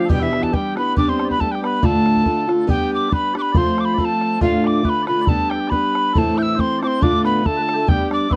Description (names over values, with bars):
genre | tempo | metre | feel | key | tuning
celtic folk, Celtic polka | 139 BPM | 2/4 | swing 53% on 8ths | D dorian | A4 = 440 Hz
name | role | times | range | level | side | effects
mellow tin whistle | melody | 0.0-8.4 s | E5 to G6 | -24 LUFS | equal | none
mellow alto saxophone | second line | 0.0-2.5, 6.2-8.4 s | E3 to E4 | -28 LUFS | equal | none
mellow small bagpipes | second line | 0.0-8.4 s | E4 to E5 | -33 LUFS | equal | none
fingerpicked steel-string acoustic guitar | accompaniment | 0.0-8.4 s | D2 to G4 | -22 LUFS | equal | none
bodhran | percussion | 0.1-8.4 s | none | -23 LUFS | equal | none
room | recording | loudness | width
light reverb | dry, close 1970s-style studio recording | -18 LUFS | mono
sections
0.0-2.7 A section; 2.7-8.4 B section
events
none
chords
0.1 Em7; 1.0 G; 1.8 Dm; 2.7 G; 3.6 F; 4.4 Dm; 5.3 G; 6.1 Am; 7.0 Dm/A